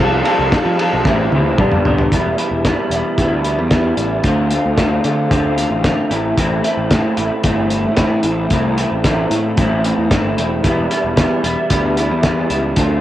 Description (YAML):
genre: indie rock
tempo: 113 BPM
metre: 4/4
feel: straight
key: unclear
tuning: A4 = 440 Hz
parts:
  - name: electric guitar through a small old amp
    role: riff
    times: 0.0-13.0 s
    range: G2 to A4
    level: -16 LUFS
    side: equal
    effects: ensemble chorus, cassette tape
  - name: fuzz picked electric bass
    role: bass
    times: 0.0-13.0 s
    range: E1 to F3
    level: -21 LUFS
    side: equal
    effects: overdrive
  - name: cloth-damped thuddy drum kit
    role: drums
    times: 0.3-12.9 s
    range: hi-hat, kick drum, ride cymbal, snare drum, toms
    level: -18 LUFS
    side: equal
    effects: cassette tape
room: light reverb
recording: home recording on cassette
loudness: -13 LUFS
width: side -13 dB against mid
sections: 0.0-2.1 A section; 2.1-13.0 B section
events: drum fill 1.1-2.1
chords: 0.0 Fadd9; 1.1 Am7; 1.6 G; 2.1 Em; 4.2 Dm7; 6.1 Am; 10.6 Em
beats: 0.52 1.05 1.58 | 2.12 2.65 3.18 3.72 | 4.25 4.78 5.32 5.85 | 6.38 6.92 7.45 7.98 | 8.52 9.05 9.58 10.12 | 10.65 11.18 11.71 12.25 | 12.78